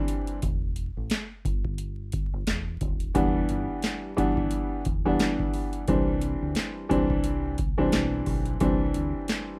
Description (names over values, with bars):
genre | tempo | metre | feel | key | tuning
hip hop, boom-bap hip-hop | 88 BPM | 4/4 | swing 57% on 16ths | E minor | A4 = 438 Hz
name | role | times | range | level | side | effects
warm upright piano | accompaniment | 0.0-9.6 s | E3 to D4 | -29 LUFS | equal | cassette tape, high-pass filter, low-pass filter
booming analog drum machine | drums | 0.1-9.5 s | handclaps, hi-hat, kick drum, snare drum | -31 LUFS | equal | none
deep dub fingered electric bass | bass | 0.4-9.1 s | D#1 to D2 | -35 LUFS | equal | none
room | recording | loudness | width
little or no reverb | rough home demo mix, vinyl crackle | -27 LUFS | mono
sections
0.4-9.6 A section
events
break 0.0-0.4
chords
0.4 Em7; 5.9 Cadd9